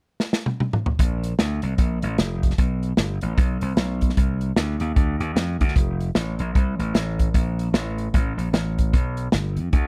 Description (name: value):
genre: uptempo gospel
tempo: 151 BPM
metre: 4/4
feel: swing 61% on 8ths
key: Bb major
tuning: A4 = 439 Hz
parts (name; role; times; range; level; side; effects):
- natural country drum kit; drums; 0.2-9.8 s; hi-hat, kick drum, snare drum, toms; -23 LUFS; equal; none
- slap bass; bass; 1.0-9.9 s; F1 to F2; -26 LUFS; equal; none
room: little or no reverb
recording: dry, close 1970s-style studio recording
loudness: -23 LUFS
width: mono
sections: 1.0-9.9 A section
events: drum fill 0.2-1.0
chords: none